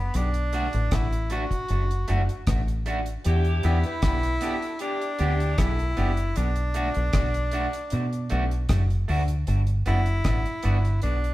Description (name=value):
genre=roots reggae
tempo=77 BPM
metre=4/4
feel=straight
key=unclear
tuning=A4 = 440 Hz
part: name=clear tenor saxophone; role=melody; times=0.0-11.3 s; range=B3 to F#4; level=-30 LUFS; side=equal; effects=none
part: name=deep dub fingered electric bass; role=bass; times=0.0-11.3 s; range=F#1 to B2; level=-24 LUFS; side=equal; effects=none
part: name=deep reggae drum kit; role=drums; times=0.1-11.3 s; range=hi-hat, kick drum, rim click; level=-28 LUFS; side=equal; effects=none
part: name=electric guitar at the edge of break-up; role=accompaniment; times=0.5-10.8 s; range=A3 to G4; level=-32 LUFS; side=right 2 dB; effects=tape echo
part: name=mellow horn section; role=second line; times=3.2-5.9 s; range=D4 to B4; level=-32 LUFS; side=equal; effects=none
room=moderate stone room reverb, RT60 1.1 s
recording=band playing live in one room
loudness=-22 LUFS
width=side -17 dB against mid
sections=0.0-9.5 A section; 9.5-11.3 B section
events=none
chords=0.1 Bm7; 3.3 Em7; 6.4 Bm7; 9.5 Gmaj7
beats=| 0.14 0.92 1.70 2.47 | 3.25 4.03 4.81 5.58 | 6.36 7.14 7.92 8.70 | 9.47 10.25 11.03